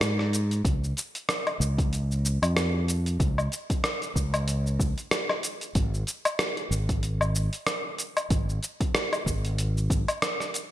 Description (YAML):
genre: organic downtempo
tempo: 94 BPM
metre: 4/4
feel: swing 57% on 16ths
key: unclear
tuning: A4 = 440 Hz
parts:
  - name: fretless electric bass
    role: bass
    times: 0.0-10.0 s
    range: Ab1 to Ab2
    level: -26 LUFS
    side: equal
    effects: sidechain pumping
  - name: dusty soul sampler-style drum kit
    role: drums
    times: 0.0-10.7 s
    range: hi-hat, rim click, shaker, woodblock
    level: -28 LUFS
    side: equal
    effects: small room ambience, gated reverb
  - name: electronic kick drum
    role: drums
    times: 0.6-10.0 s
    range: none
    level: -27 LUFS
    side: equal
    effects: overdrive, small room ambience
room: light reverb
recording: bright 1980s-style digital production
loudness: -25 LUFS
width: side -13 dB against mid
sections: 0.0-10.7 A section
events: break 10.2-10.7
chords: none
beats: 0.01 | 0.65 1.28 1.92 2.56 | 3.20 3.84 4.48 5.12 | 5.75 6.39 7.03 7.67 | 8.31 8.94 9.58 10.22